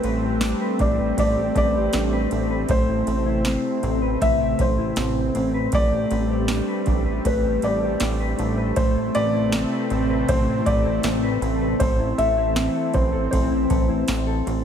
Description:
dream pop; 79 BPM; 4/4; straight; A minor; A4 = 440 Hz
felt-muted upright piano; melody; 0.0-14.4 s; B4 to E5; -26 LUFS; equal; tape echo
lush unison pad; sustained chords; 0.0-14.6 s; C3 to C4; -27 LUFS; equal; chorus
mellow electric guitar; arpeggios; 0.0-14.6 s; A3 to B4; -25 LUFS; left 2 dB; wide subtle chorus, tape echo
chorused synth bass; bass; 0.0-14.6 s; A1; -26 LUFS; right 1 dB
booming analog drum machine; drums; 0.0-14.6 s; kick drum, ride cymbal, snare drum, tambourine; -24 LUFS; right 1 dB; overdrive
light reverb, digital ambience; -19 LUFS; side -8 dB against mid
0.0-14.6 A section
0.0 Gadd9/A; 2.7 Amadd9; 5.7 Gadd9/A; 8.8 Amadd9; 11.8 Am
0.41 1.17 1.93 | 2.69 3.45 4.21 4.97 | 5.73 6.49 7.25 8.01 | 8.77 9.53 10.29 11.04 | 11.80 12.56 13.32 14.08

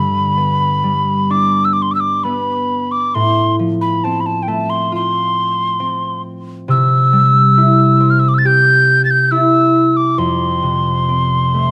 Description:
celtic folk, Celtic slow air; 68 BPM; 4/4; rubato; A4 = 438 Hz
mellow hollow mid whistle; melody; 0.0-11.7 s; G5 to A6; -17 LUFS; equal; slapback echo
concert harp; accompaniment; 0.0-11.7 s; F2 to F5; -18 LUFS; equal
little or no reverb; recorded outdoors, with no room sound; -14 LUFS; mono
0.0-11.7 A section
0.0 G; 3.1 F/A; 6.7 C; 10.2 F5
0.38 1.32 2.24 | 3.14 4.04 4.92 5.81 | 6.69 7.57 8.45 9.32 | 10.19 11.08

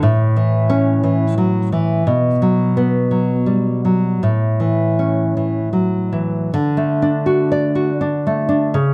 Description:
romantic piece for solo classical guitar; 77-90 BPM; 3/4; rubato; D major; A4 = 440 Hz
nylon-string guitar; solo; 0.0-8.9 s; A2 to D5; -17 LUFS; equal
moderate recital hall reverb, RT60 1.7 s; dark, warm production; -17 LUFS; mono
0.0-6.5 A section; 6.5-8.9 B section
0.0 A; 2.1 B5; 4.2 A; 6.5 D
| 0.02 0.70 1.38 | 2.06 2.75 3.46 | 4.21 4.98 5.75 | 6.52 7.28 8.03 | 8.77

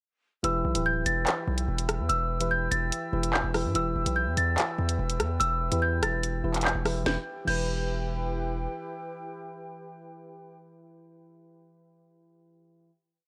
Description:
hip hop, drill; 145 BPM; 4/4; half-time; E minor; A4 = 445 Hz
small celesta; melody; 0.4-8.3 s; E6 to A6; -32 LUFS; equal
soft electric-piano-like synth keys; accompaniment; 0.4-12.9 s; E3 to B4; -37 LUFS; equal; chorus
mellow large flute ensemble; sustained chords; 0.4-10.6 s; E4 to E6; -41 LUFS; equal
distorted 808-style bass; bass; 0.4-8.7 s; D1 to G2; -32 LUFS; equal; distortion
drill drum kit; drums; 0.4-7.6 s; crash cymbal, handclaps, hi-hat, rim click, snare drum; -32 LUFS; equal
digital ambience; -28 LUFS; mono
0.4-7.1 hook; 7.1-10.4 final chord
0.4 Em
| 0.44 0.85 1.27 1.68 | 2.10 2.51 2.92 3.34 | 3.75 4.16 4.58 4.99 | 5.41 5.82 6.23 6.65 | 7.06 7.47 7.89 8.30 | 8.72 9.13 9.54 9.96

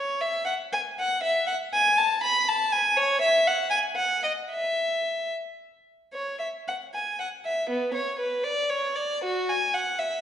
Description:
classical, baroque-style suite movement for unaccompanied violin; 72-82 BPM (dotted quarters); 6/8; rubato; E major; A4 = 441 Hz
rich violin; solo; 0.0-10.2 s; B3 to B5; -23 LUFS; equal
wet recital hall reverb, RT60 1.5 s; recorded in a church or concert hall, nothing above 11.0 kHz; -23 LUFS; side -10 dB against mid
0.0-6.1 A section; 6.1-10.2 A section
0.73 | 1.49 2.24 | 2.98 3.74 | 4.54 5.33 | 6.15 6.94 | 7.70 8.44 | 9.22 9.99

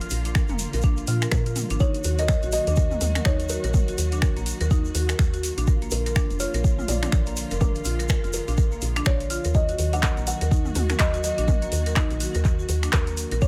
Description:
afro house; 124 BPM; 4/4; swing 60% on 16ths; Eb harmonic minor; A4 = 439 Hz
kalimba; melody; 0.0-13.5 s; Bb4 to Gb5; -33 LUFS; equal; vintage 12-bit sampler grit, digital delay
dark studio string section; sustained chords; 0.0-13.5 s; D3 to Gb4; -38 LUFS; equal; sidechain pumping
marimba with hard mallets; arpeggios; 0.0-13.5 s; Bb3 to D5; -35 LUFS; equal; sidechain pumping, digital delay
woody FM bass; bass; 0.0-13.5 s; F1 to Bb2; -29 LUFS; equal; sidechain pumping
deep house drum kit; drums; 0.0-13.4 s; finger snaps, handclaps, hi-hat, toms; -32 LUFS; equal; overdrive
egg shaker; percussion; 0.0-13.5 s; -39 LUFS; equal
electronic kick drum; drums; 0.4-13.5 s; -24 LUFS; equal
studio ambience; -23 LUFS; mono
0.0-13.5 A section
0.0 Bb; 1.8 Ebm; 5.7 Bb; 9.5 Ebm
0.35 0.84 1.32 | 1.81 2.29 2.77 3.26 | 3.74 4.22 4.71 5.19 | 5.68 6.16 6.64 7.13 | 7.61 8.10 8.58 9.06 | 9.55 10.03 10.52 11.00 | 11.48 11.97 12.45 12.94 | 13.42

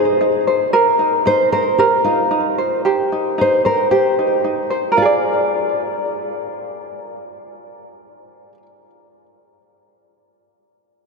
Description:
pop; 114 BPM; 4/4; swing 60% on 16ths; Bb mixolydian; A4 = 440 Hz
nylon-string guitar; melody; 0.0-8.5 s; F4 to D5; -19 LUFS; left 1 dB; ping-pong delay
tenor ukulele; accompaniment; 0.0-8.7 s; Eb4 to D5; -17 LUFS; right 1 dB
wet cathedral reverb, RT60 5.8 s; dreamy mix soaked in reverb; -14 LUFS; side -3 dB against mid
0.0-5.0 A section; 5.0-9.2 B section
0.0 Ab/Eb; 0.7 Cm7; 2.8 Eb6; 5.0 Bb7
0.21 | 0.73 1.26 1.79 2.32 | 2.85 3.38 3.90 4.43 | 4.96 5.49 6.02 6.55 | 7.08 7.60 8.13

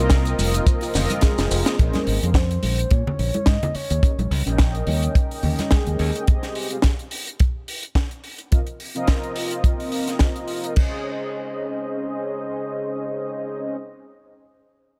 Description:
nu-disco, nu disco; 107 BPM; 4/4; swing 56% on 16ths; A4 = 440 Hz
soft octave-layered synth lead; melody; 0.0-6.2 s; Ab4 to Eb5; -32 LUFS; equal; chorus, tape echo
mellow synth brass; accompaniment; 0.0-13.8 s; C4 to G5; -30 LUFS; equal; chorus, sidechain pumping, tape echo
soft round pluck; arpeggios; 0.0-1.7 s; Bb3 to Eb5; -38 LUFS; equal
modern bright fingered electric bass; bass; 0.0-6.1 s; F1 to Bb2; -25 LUFS; equal
kick drum; drums; 0.1-10.9 s; -20 LUFS; equal
tight funk drum kit; drums; 0.1-10.9 s; crash cymbal, hi-hat, shaker, snare drum; -30 LUFS; equal
congas; percussion; 0.4-5.7 s; -32 LUFS; equal
small room ambience; -22 LUFS; mono
0.0-1.8 A section; 1.8-10.8 B section; 10.8-13.0 C section
drop 0.0-1.8; drum fill 0.9-1.8; band accent 1.6
0.0 F7sus4; 1.8 Bbm11; 3.8 Eb7; 6.3 Abmaj7; 8.2 F7sus4; 10.8 Abadd11/Db
0.11 0.67 1.23 | 1.79 2.35 2.91 3.47 | 4.03 4.59 5.15 5.71 | 6.27 6.83 7.40 7.96 | 8.52 9.08 9.64 10.20 | 10.76 11.32 11.88 12.44

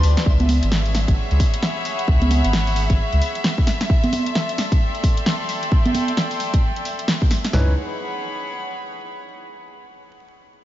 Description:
UK garage, two-step garage; 132 BPM; 4/4; swing 60% on 16ths; C# minor; A4 = 443 Hz
bright symphonic violin section; sustained chords; 0.0-7.5 s; B4 to E5; -30 LUFS; left 2 dB; sidechain pumping
soft dub sub bass; bass; 0.0-3.2, 7.5-7.7 s; G#1 to D2; -18 LUFS; equal
house drum kit; drums; 0.0-7.5 s; congas, hi-hat, snare drum; -23 LUFS; right 1 dB; studio reverb
rich chamber string section; texture; 0.0-9.3 s; C4 to B#5; -29 LUFS; equal; sidechain pumping
house drum kit; drums; 0.3-7.7 s; kick drum, snare drum, toms; -18 LUFS; equal; studio reverb
warm grand piano; stabs; 7.5-7.7 s; C#4 to B4; -33 LUFS; left 1 dB; ping-pong delay
light reverb; vinyl crackle, nothing above 7.6 kHz; -17 LUFS; side -13 dB against mid
0.3-7.5 A section; 7.5-9.4 B section
break 0.0; drum fill 0.0
0.3 C#m7; 3.7 Dsus2; 7.5 C#7(no3)
| 0.26 0.72 1.17 1.63 | 2.08 2.54 2.99 3.44 | 3.90 4.35 4.81 5.26 | 5.72 6.17 6.63 7.08 | 7.54 7.99 8.44 8.90

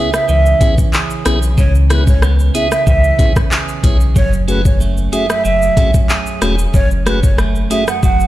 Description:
dancehall; 93 BPM; 4/4; straight; C# minor; A4 = 439 Hz
breathy mellow jazz flute; melody; 0.0-8.3 s; B4 to F#5; -18 LUFS; right 2 dB; digital delay
tonewheel organ; accompaniment; 0.0-7.8 s; A3 to G#4; -22 LUFS; left 2 dB; stopped rotary speaker
clean electric guitar; arpeggios; 0.0-8.3 s; F#2 to G#4; -21 LUFS; right 7 dB; wide subtle chorus, digital delay
afro-pop drum kit; drums; 0.1-8.3 s; handclaps, hi-hat, kick drum, rim click, shaker; -14 LUFS; equal
sub bass with octave; bass; 0.3-8.3 s; E1 to C#2; -14 LUFS; equal
little or no reverb; played on a big sound system in a bare room, large studio reverb; -11 LUFS; side -15 dB against mid
0.0-8.3 A section
0.0 C#m7; 4.2 F#madd9
0.29 0.93 | 1.58 2.22 2.87 3.51 | 4.16 4.80 5.45 6.09 | 6.74 7.38 8.03

